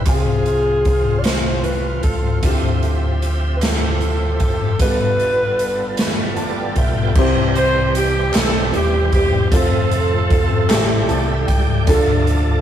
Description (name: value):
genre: slow gospel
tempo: 51 BPM (dotted quarters)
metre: 6/8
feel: straight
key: C major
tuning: A4 = 442 Hz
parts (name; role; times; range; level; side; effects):
- clear grand piano; accompaniment; 0.0-12.6 s; G2 to A5; -24 LUFS; left 2 dB; none
- bright tonewheel organ; sustained chords; 0.0-12.6 s; E3 to G5; -24 LUFS; right 3 dB; slow rotary speaker, overdrive, chorus vibrato
- fingered electric bass; bass; 0.0-12.6 s; Eb1 to D2; -21 LUFS; equal; none
- mellow alto saxophone; melody; 0.1-6.3 s; Ab4 to D5; -21 LUFS; equal; none
- swinging big-band drum kit; drums; 0.1-12.5 s; crash cymbal, hi-hat, kick drum, snare drum; -19 LUFS; left 1 dB; none
- clear saxophone section; melody; 7.6-11.5 s; C4 to C5; -20 LUFS; right 2 dB; none
- group handclap; percussion; 8.3-11.1 s; none; -27 LUFS; left 3 dB; none
room: moderate studio reverb, RT60 0.5 s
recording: rough rehearsal-room recording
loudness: -15 LUFS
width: side -10 dB against mid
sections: 0.0-7.2 A section; 7.2-12.6 B section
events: grand piano fill 6.0-7.2, 10.7-11.9; tonewheel organ fill 6.0-7.2, 10.7-11.9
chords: 0.1 Fmadd9/C; 2.4 Dm11; 4.8 G9; 7.2 C; 9.5 F; 10.7 A7; 11.9 Dm